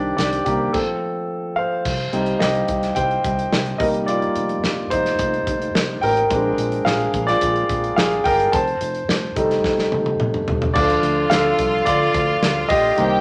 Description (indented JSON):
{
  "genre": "piano-driven pop",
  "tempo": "108 BPM",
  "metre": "4/4",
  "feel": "straight",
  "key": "unclear",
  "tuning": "A4 = 439 Hz",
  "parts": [
    { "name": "warm concert grand piano", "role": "accompaniment", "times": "0.0-13.2 s", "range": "Eb3 to A5", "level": "-21 LUFS", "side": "equal", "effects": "none" },
    { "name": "fat analog bass", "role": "bass", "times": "0.0-13.2 s", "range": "F1 to D2", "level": "-30 LUFS", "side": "equal", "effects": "none" },
    { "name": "modern studio drum kit", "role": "drums", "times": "0.2-13.1 s", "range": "crash cymbal, hi-hat, kick drum, snare drum, toms", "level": "-26 LUFS", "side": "equal", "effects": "none" },
    { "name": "clear studio violin section", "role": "second line", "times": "10.8-13.2 s", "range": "F4 to G5", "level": "-26 LUFS", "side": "equal", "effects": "none" }
  ],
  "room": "wet large studio reverb, RT60 0.9 s",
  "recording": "none",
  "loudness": "-20 LUFS",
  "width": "mono",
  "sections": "0.0-1.9 A section; 1.9-10.8 B section; 10.8-13.2 C section",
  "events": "grand piano solo 0.0-1.9, 1.9-10.8, 10.8-13.2; stop 0.7-1.9; drum fill 9.6-10.8",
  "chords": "0.0 Cmadd9; 0.7 F; 1.9 Cm; 3.8 F7sus4; 6.3 Bb7; 8.5 F7; 10.8 Dm"
}